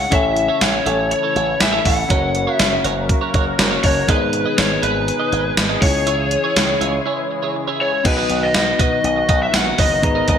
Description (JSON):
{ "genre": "1980s-style pop", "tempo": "121 BPM", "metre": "4/4", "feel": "straight", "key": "B major", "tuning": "A4 = 440 Hz", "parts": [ { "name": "lead guitar through a small cranked amp", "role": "melody", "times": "0.0-10.4 s", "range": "B4 to F#5", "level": "-20 LUFS", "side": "left 2 dB", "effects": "overdrive, digital delay" }, { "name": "bell-like tine electric piano", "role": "accompaniment", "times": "0.0-10.4 s", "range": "B3 to A#5", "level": "-24 LUFS", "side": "left 2 dB", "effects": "medium stereo tremolo" }, { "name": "twelve-string electric guitar", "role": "riff", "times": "0.0-10.4 s", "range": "B3 to D#5", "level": "-26 LUFS", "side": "right 7 dB", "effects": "wide subtle chorus" }, { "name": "slap bass with an envelope filter", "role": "bass", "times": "0.0-10.4 s", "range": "F#1 to B2", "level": "-23 LUFS", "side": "equal", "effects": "none" }, { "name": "sweeping resonant pad", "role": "sustained chords", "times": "0.1-10.4 s", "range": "B2 to A#4", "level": "-27 LUFS", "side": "left 1 dB", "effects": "chorus" }, { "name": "gated 80s digital drum machine", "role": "drums", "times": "0.1-10.4 s", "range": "crash cymbal, hi-hat, kick drum, snare drum, tambourine", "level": "-18 LUFS", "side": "right 1 dB", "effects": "gated reverb, gated reverb snare" } ], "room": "moderate lush hall reverb, RT60 1.5 s", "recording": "bright 1980s-style digital production", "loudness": "-15 LUFS", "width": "side -8 dB against mid", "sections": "0.0-8.1 A section; 8.1-10.4 B section", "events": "break 7.1-8.1", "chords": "0.1 A; 2.1 F#; 4.1 G#m; 5.8 C#m; 8.1 B" }